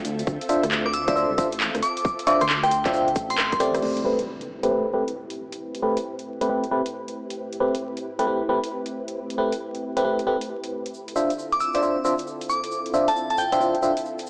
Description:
UK garage, two-step garage; 135 BPM; 4/4; swing 64% on 16ths; A minor; A4 = 438 Hz
soft string machine; sustained chords; 0.0-14.3 s; A2 to E5; -32 LUFS; equal; phaser, ensemble chorus, sidechain pumping
dark detuned saw bass; bass; 0.0-3.8 s; A1 to D2; -31 LUFS; equal
garage drum kit; drums; 0.0-14.3 s; crash cymbal, handclaps, hi-hat, rim click; -28 LUFS; equal; overdrive, studio reverb
egg shaker; percussion; 0.1-3.8, 10.9-14.3 s; -42 LUFS; equal
electronic kick drum; drums; 0.3-3.6 s; -25 LUFS; equal; studio reverb
FM electric piano; stabs; 0.5-13.9 s; A3 to E5; -23 LUFS; equal; chorus, phaser, low-pass filter, analog delay
glassy synth bell; melody; 0.9-3.6, 11.5-13.6 s; G5 to E6; -24 LUFS; equal; chorus, phaser, analog delay
impact; sound effects; 3.8-5.6 s; -40 LUFS; equal
moderate lush hall reverb, RT60 1.8 s; dry, gritty hardware recording, vinyl crackle, small speaker sound; -21 LUFS; side -32 dB against mid
0.0-3.8 A section; 3.8-14.3 B section
drum fill 3.4-3.8; band accent 3.7; impact 3.8-5.6; filter sweep on FM electric piano 3.8-14.3; filter sweep on string machine 3.8-14.3
0.0 Dm9; 3.8 Am9; 10.9 Dm9

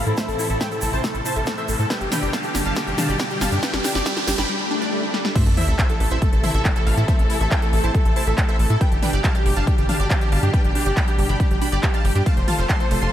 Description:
uplifting trance; 139 BPM; 4/4; straight; A minor; A4 = 440 Hz
dense compressed supersaw; melody; 0.0-13.1 s; G4 to C6; -28 LUFS; right 1 dB; vintage 12-bit sampler grit, sidechain pumping, low-pass filter, tape echo
plucky unison lead; second line; 0.0-13.1 s; G4 to C6; -32 LUFS; equal
muted studio string section; sustained chords; 0.0-13.1 s; A2 to A4; -28 LUFS; left 1 dB; sidechain pumping
tight sequencer bass; bass; 0.0-13.1 s; F1 to A2; -22 LUFS; equal; sidechain pumping
riser, swell and sub drop; sound effects; 0.5-7.1 s; -28 LUFS; left 1 dB
wide unison pluck; arpeggios; 0.1-13.1 s; G3 to F5; -29 LUFS; right 2 dB; phaser, sidechain pumping, tape echo
big-room dance drum kit; drums; 0.1-13.1 s; crash cymbal, handclaps, hi-hat, ride cymbal, snare drum, toms; -27 LUFS; equal; overdrive, sidechain pumping on hats, sidechain pumping on toms, sidechain pumping on cymbals
tube shaker; percussion; 0.1-4.5 s; -35 LUFS; right 3 dB
electronic kick drum; drums; 0.2-12.8 s; -20 LUFS; equal; overdrive, high-pass filter on kick
light reverb, digital ambience; -18 LUFS; side -11 dB against mid
0.0-5.4 A section; 5.4-13.1 B section
build-up 0.0-5.4; drum fill 0.0-4.5, 5.1; riser 0.5-4.5; filter sweep on synth pluck 0.0-5.4; swell 4.5-5.4; drop 5.4-13.1; impact 5.4-7.1
0.0 Am; 1.9 G; 5.4 Am; 8.8 G; 12.3 F

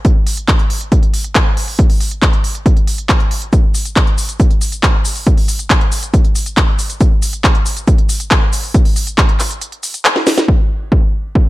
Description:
trance; 138 BPM; 4/4; straight
electronic kick drum; drums; 0.0-11.4 s; -12 LUFS; equal
techno drum kit; drums; 0.0-10.6 s; crash cymbal, handclaps, hi-hat, shaker, snare drum; -16 LUFS; equal; low-pass filter on hats, low-pass filter on snare, low-pass filter on perc, low-pass filter on cymbals, low-pass filter on room
little or no reverb; -11 LUFS; side -18 dB against mid
0.0-10.5 A section; 10.5-11.5 B section
kick drops out 9.6-10.5; drum fill 10.2-10.5

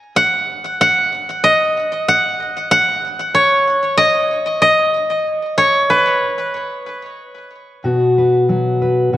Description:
folk; 62 BPM (dotted quarters); 6/8; straight; B major; A4 = 440 Hz
koto; melody; 0.2-7.7 s; B4 to F#5; -13 LUFS; equal; digital delay
fingerpicked steel-string acoustic guitar; accompaniment; 7.8-9.2 s; B2 to B4; -13 LUFS; left 1 dB
wet scoring stage reverb, RT60 2.0 s; worn, warbling old tape, cassette tape, warbly pitch drift; -13 LUFS; side -14 dB against mid
0.0-7.8 A section; 7.8-9.2 B section
0.0 N.C.; 7.8 B5

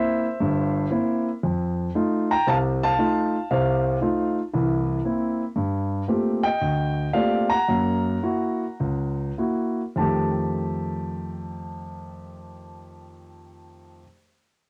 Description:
solo jazz; 98-116 BPM; 4/4; swing 68% on 8ths; F mixolydian; A4 = 440 Hz
warm concert grand piano; solo; 0.0-14.0 s; G1 to Bb5; -24 LUFS; equal
moderate booth ambience, RT60 0.2 s; home recording on cassette; -24 LUFS; mono
0.0-5.6 A section; 5.6-10.0 B section; 10.0-14.7 C section
slowing down 5.6-10.0
0.0 C7; 1.4 F7; 4.5 C7; 5.6 Gm11; 7.7 Gb7; 10.0 F9

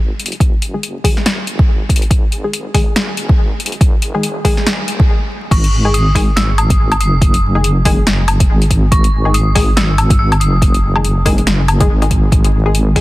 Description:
deep dubstep; 141 BPM; 4/4; swing 58% on 16ths, half-time; A4 = 440 Hz
deep soft wobble bass; bass; 0.0-13.0 s; F#1 to G#1; -15 LUFS; equal; chorus, high-pass filter
deep house drum kit; drums; 0.2-13.0 s; crash cymbal, hi-hat, snare drum, woodblock; -18 LUFS; left 1 dB; overdrive
electronic kick drum; drums; 0.4-13.0 s; -12 LUFS; equal; overdrive
filtered dub chord stab; stabs; 0.7-13.0 s; D#3 to G#4; -21 LUFS; left 2 dB; chorus, cassette tape, dub echo
dark detuned synth bell; melody; 5.5-11.2 s; C#6 to E6; -21 LUFS; right 1 dB; chorus, dub echo
digital ambience; dense, heavily limited modern master, vinyl crackle; -11 LUFS; side -18 dB against mid
0.0-5.5 A section; 5.5-13.0 B section
build-up 0.0-5.5; filter sweep on synth stab 0.0-5.5; stop 5.1-5.5; drop 5.5-13.0
0.0 G#5

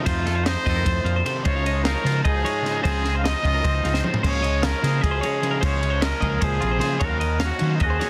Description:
math rock and midwest emo; 302 BPM (eighths); 7/8; straight; Bb minor; A4 = 440 Hz
breathy trumpet; melody; 0.0-8.1 s; Eb4 to F5; -28 LUFS; equal; slapback echo, plate reverb
twangy electric guitar; accompaniment; 0.0-8.1 s; F2 to A4; -32 LUFS; equal; plate reverb
twelve-string electric guitar; arpeggios; 0.0-8.1 s; F4 to F5; -32 LUFS; equal; spring reverb, plate reverb
overdriven semi-hollow guitar; riff; 0.0-8.0 s; C3 to Eb4; -33 LUFS; equal
fingered electric bass; bass; 0.1-8.0 s; Bb1 to Eb3; -27 LUFS; equal
compact cocktail drum kit; drums; 0.1-8.1 s; crash cymbal, kick drum, ride cymbal, snare drum, toms; -28 LUFS; equal; soft clipping on snare
light reverb; dense, heavily limited modern master; -22 LUFS; mono
0.0-8.1 A section
drum fill 3.9
0.0 F7; 1.5 Dbmaj9; 4.2 Bbm9/Db; 7.0 Ebm9

